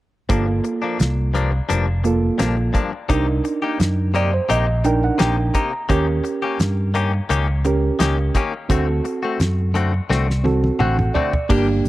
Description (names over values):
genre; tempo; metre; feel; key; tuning
straight-eighth soul blues; 86 BPM; 4/4; straight; G harmonic minor; A4 = 440 Hz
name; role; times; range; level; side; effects
bright reed electric piano; accompaniment; 0.3-11.9 s; Bb3 to Bb5; -21 LUFS; right 3 dB; none
direct-recorded clean electric guitar; stabs; 0.3-11.7 s; G2 to G4; -24 LUFS; left 5 dB; spring reverb
fingered electric bass; bass; 0.3-11.9 s; F1 to G2; -20 LUFS; equal; none
damped 70s drum kit; drums; 0.3-11.9 s; crash cymbal, hi-hat, kick drum, snare drum, toms; -21 LUFS; equal; none
room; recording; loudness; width
little or no reverb; dry, close 1970s-style studio recording; -17 LUFS; side -16 dB against mid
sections
0.3-11.5 A section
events
reed electric piano fill 3.8-5.9, 10.4-11.5; drum fill 10.1-11.5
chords
0.3 Gm7; 3.1 Cm7; 5.9 Eb7; 8.7 D7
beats
| 0.30 1.00 1.70 2.40 | 3.10 3.80 4.50 5.20 | 5.89 6.60 7.30 8.00 | 8.70 9.40 10.10 10.80 | 11.50